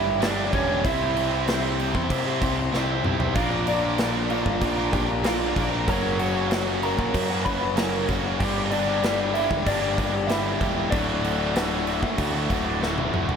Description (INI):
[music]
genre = quiet-loud alternative rock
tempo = 95 BPM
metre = 4/4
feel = straight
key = unclear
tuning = A4 = 442 Hz
[part]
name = electric guitar through a small old amp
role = melody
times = 0.0-12.8 s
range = C#4 to B5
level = -28 LUFS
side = right 1 dB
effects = lush chorus, tape echo
[part]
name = biting overdriven guitar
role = riff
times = 0.0-13.4 s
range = D2 to C5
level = -29 LUFS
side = left 10 dB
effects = none
[part]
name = scooped high-gain guitar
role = riff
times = 0.0-13.4 s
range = D2 to C5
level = -30 LUFS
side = right 11 dB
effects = distortion
[part]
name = tight distorted guitar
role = riff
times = 0.0-13.4 s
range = D2 to C4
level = -32 LUFS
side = equal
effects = distortion
[part]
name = picked electric bass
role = bass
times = 0.0-13.4 s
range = D1 to C3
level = -29 LUFS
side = equal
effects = none
[part]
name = big rock drum kit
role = drums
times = 0.2-13.4 s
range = crash cymbal, kick drum, snare drum, toms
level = -27 LUFS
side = right 1 dB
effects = none
[sound]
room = light reverb, studio reverb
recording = none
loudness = -21 LUFS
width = side -7 dB against mid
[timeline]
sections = 0.0-13.4 A section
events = drum fill 2.7-3.4, 12.8-13.4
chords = 0.0 Gm; 0.8 C; 3.4 Bb; 5.9 F#; 8.4 Gm; 10.9 D